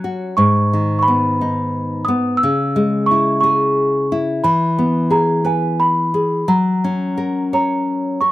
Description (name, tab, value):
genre	children's music, lullaby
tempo	59 BPM (dotted quarters)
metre	6/8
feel	straight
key	unclear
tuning	A4 = 440 Hz
part	celesta	melody	0.0-8.3 s	G#5 to E6	-18 LUFS	right 1 dB	none
part	nylon-string guitar	accompaniment	0.0-8.3 s	G#2 to C#5	-17 LUFS	left 1 dB	none
room	little or no reverb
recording	dry, close 1970s-style studio recording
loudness	-14 LUFS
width	side -16 dB against mid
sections	0.0-8.3 A section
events	none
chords	0.4 G#m; 2.4 C#m; 4.4 E; 6.5 F#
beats	| 0.37 1.40 | 2.42 3.43 | 4.44 5.46 | 6.48 7.52